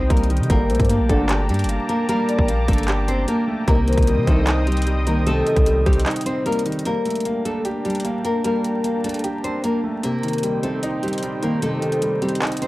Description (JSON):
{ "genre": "hip hop, trap", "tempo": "151 BPM", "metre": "4/4", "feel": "half-time", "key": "G minor", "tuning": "A4 = 440 Hz", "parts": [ { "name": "nylon-string guitar", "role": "melody", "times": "0.0-12.7 s", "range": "G3 to C5", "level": "-23 LUFS", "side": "left 1 dB", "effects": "analog delay" }, { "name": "dark concert grand piano", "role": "accompaniment", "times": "0.0-12.7 s", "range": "C3 to G4", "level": "-24 LUFS", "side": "right 1 dB", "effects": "none" }, { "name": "warm analog pad", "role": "sustained chords", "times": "0.0-12.7 s", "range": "D4 to Eb6", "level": "-31 LUFS", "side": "equal", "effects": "chorus" }, { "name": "long sustained 808-style bass", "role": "bass", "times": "0.0-6.1 s", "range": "G1 to C3", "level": "-21 LUFS", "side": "equal", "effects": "none" }, { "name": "trap drum kit", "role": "drums", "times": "0.1-12.7 s", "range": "handclaps, hi-hat, kick drum", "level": "-22 LUFS", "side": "equal", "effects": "none" }, { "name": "mellow brass ensemble", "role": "stabs", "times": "0.5-4.7 s", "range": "D2 to Eb3", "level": "-25 LUFS", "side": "equal", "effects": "none" }, { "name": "hollow clarinet-like synth lead", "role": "second line", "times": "0.7-5.7 s", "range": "C5 to Eb5", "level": "-34 LUFS", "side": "left 1 dB", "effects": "none" } ], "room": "little or no reverb", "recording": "dry, gritty hardware recording, vinyl crackle", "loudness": "-18 LUFS", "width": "side -18 dB against mid", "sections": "0.0-6.9 A section; 6.9-12.7 B section", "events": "break 6.1-6.9", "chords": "0.5 Gmadd9; 3.7 Cm; 6.9 Gmadd9; 10.0 Cm" }